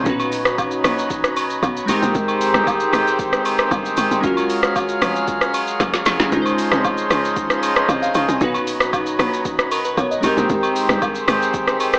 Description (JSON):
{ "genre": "amapiano", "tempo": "115 BPM", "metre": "4/4", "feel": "straight", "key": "unclear", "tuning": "A4 = 440 Hz", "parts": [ { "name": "glassy digital keys", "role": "accompaniment", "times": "0.0-12.0 s", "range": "Bb2 to Ab5", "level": "-23 LUFS", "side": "equal", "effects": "chorus" }, { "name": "hand-pumped harmonium", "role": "sustained chords", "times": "0.0-12.0 s", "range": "Eb3 to F5", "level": "-20 LUFS", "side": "equal", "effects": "sidechain pumping" }, { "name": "tight log drum bass", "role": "bass", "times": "0.0-11.7 s", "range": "F1 to Db2", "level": "-24 LUFS", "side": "equal", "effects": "none" }, { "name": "afro-pop drum kit", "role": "drums", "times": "0.1-12.0 s", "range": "hi-hat, kick drum, rim click, shaker, snare drum", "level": "-22 LUFS", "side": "equal", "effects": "overdrive" }, { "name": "agogo bells and woodblock", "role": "percussion", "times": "0.2-11.9 s", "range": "none", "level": "-25 LUFS", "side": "equal", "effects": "none" } ], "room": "light reverb", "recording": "AM radio sound", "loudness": "-16 LUFS", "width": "side -35 dB against mid", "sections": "0.0-12.0 A section", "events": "drum fill 5.8-6.3", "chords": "0.1 Cbmaj9; 1.9 Abmaj9; 4.2 Gbmaj9; 6.3 Dbmaj9; 8.4 Cbmaj9; 10.2 Abmaj9", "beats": "| 0.06 0.58 1.10 1.63 | 2.15 2.67 3.19 3.71 | 4.24 4.76 5.28 5.80 | 6.32 6.84 7.37 7.89 | 8.41 8.93 9.45 9.97 | 10.50 11.02 11.54" }